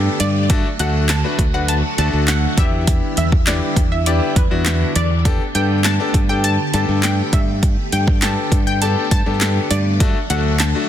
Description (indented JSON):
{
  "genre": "dance-pop",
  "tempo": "101 BPM",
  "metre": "4/4",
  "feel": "straight",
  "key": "G major",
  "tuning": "A4 = 441 Hz",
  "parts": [
    { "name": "bright concert grand piano", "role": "accompaniment", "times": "0.0-10.9 s", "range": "A3 to B4", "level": "-23 LUFS", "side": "left 5 dB", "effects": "sidechain pumping" },
    { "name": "phased string machine", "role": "sustained chords", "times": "0.0-10.9 s", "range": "D3 to G4", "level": "-26 LUFS", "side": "right 1 dB", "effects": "ensemble chorus, phaser, sidechain pumping" },
    { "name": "modern bright fingered electric bass", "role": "bass", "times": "0.0-10.7 s", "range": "D2 to G2", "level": "-18 LUFS", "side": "equal", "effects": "sidechain pumping" },
    { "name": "analog pluck", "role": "melody", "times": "0.2-10.7 s", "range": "B4 to A5", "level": "-24 LUFS", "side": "equal", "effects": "chorus, sidechain pumping, ping-pong delay" },
    { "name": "deep house drum kit", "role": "drums", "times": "0.2-10.7 s", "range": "handclaps, hi-hat, kick drum, snare drum", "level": "-18 LUFS", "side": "equal", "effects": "overdrive" }
  ],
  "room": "light reverb",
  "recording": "dense, heavily limited modern master",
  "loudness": "-14 LUFS",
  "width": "side -10 dB against mid",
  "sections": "0.0-10.9 A section",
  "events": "none",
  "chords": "0.5 D; 2.6 Em7; 5.3 Gadd9; 10.0 D",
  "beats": "| 0.50 1.09 1.69 2.28 | 2.88 3.47 4.06 4.66 | 5.25 5.85 6.44 7.03 | 7.63 8.22 8.82 9.41 | 10.00 10.60"
}